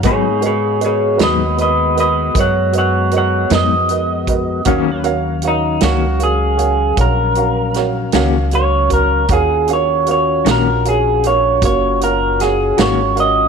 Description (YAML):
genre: slow blues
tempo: 52 BPM (dotted quarters)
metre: 12/8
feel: straight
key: Eb minor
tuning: A4 = 444 Hz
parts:
  - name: mellow electric guitar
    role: accompaniment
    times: 0.0-13.0 s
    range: Ab2 to Gb4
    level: -20 LUFS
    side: left 13 dB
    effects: tremolo
  - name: warm upright piano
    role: accompaniment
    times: 0.0-13.5 s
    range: Gb4 to F5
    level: -21 LUFS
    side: right 9 dB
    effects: none
  - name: mellow tonewheel organ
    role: sustained chords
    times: 0.0-13.5 s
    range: Gb3 to G5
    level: -24 LUFS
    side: left 11 dB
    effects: slow rotary speaker
  - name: upright bass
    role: bass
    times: 0.0-13.5 s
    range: Gb1 to Ab2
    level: -19 LUFS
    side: equal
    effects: none
  - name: natural country drum kit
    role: drums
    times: 0.0-13.3 s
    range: hi-hat, kick drum, snare drum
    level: -20 LUFS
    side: right 3 dB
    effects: none
  - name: electric guitar through a small old amp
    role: melody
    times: 0.1-13.5 s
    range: Eb4 to Gb5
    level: -16 LUFS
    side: right 2 dB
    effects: wide subtle chorus
room: light reverb, small room ambience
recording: 1960s-style stereo with parts hard left and right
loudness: -13 LUFS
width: side -6 dB against mid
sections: 0.0-13.5 A section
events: clean electric guitar solo 0.0-13.5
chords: 0.0 Abm7; 4.7 Ebm7